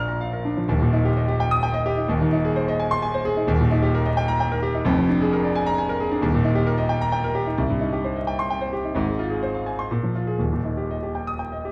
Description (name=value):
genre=classical, virtuoso piano study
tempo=130 BPM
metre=3/4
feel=uneven beats, rubato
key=Eb major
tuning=A4 = 445 Hz
part: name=clear grand piano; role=solo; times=0.0-11.7 s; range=Eb1 to F6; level=-23 LUFS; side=equal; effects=none
room=moderate recital hall reverb, RT60 1.5 s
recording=dark, warm production, vinyl crackle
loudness=-23 LUFS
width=mono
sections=0.7-11.7 A section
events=none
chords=0.0 Bb; 0.7 Eb; 2.1 Ab/Eb; 3.5 Eb; 4.9 Bb7/F; 6.2 Eb; 7.6 Cm; 9.0 Fm/Ab; 9.9 Bb5; 10.4 Eb